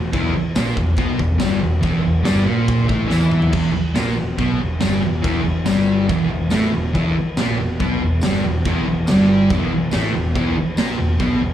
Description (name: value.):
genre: garage rock duo or trio.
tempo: 141 BPM.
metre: 4/4.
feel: straight.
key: unclear.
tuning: A4 = 437 Hz.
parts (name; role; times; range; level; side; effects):
fuzz guitar; riff; 0.0-11.5 s; E2 to E4; -18 LUFS; equal; distortion, slapback echo.
fuzz picked electric bass; bass; 0.0-11.5 s; E1 to E2; -24 LUFS; equal; overdrive.
raw garage drum kit; drums; 0.1-11.3 s; crash cymbal, kick drum, snare drum, toms; -23 LUFS; equal; none.
tambourine; percussion; 0.6-10.9 s; none; -37 LUFS; left 2 dB; none.
room: moderate club reverb, RT60 0.6 s.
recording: live gig heard through the venue's PA, club ambience.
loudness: -16 LUFS.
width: side -11 dB against mid.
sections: 0.0-3.5 A section; 3.5-11.5 B section.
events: drum fill 3.1-3.5.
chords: 0.0 E5.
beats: | 0.12 0.55 0.98 1.40 | 1.83 2.25 2.68 3.11 | 3.53 3.96 4.39 4.82 | 5.24 5.67 6.09 6.52 | 6.95 7.37 7.80 8.23 | 8.65 9.08 9.50 9.93 | 10.35 10.78 11.20.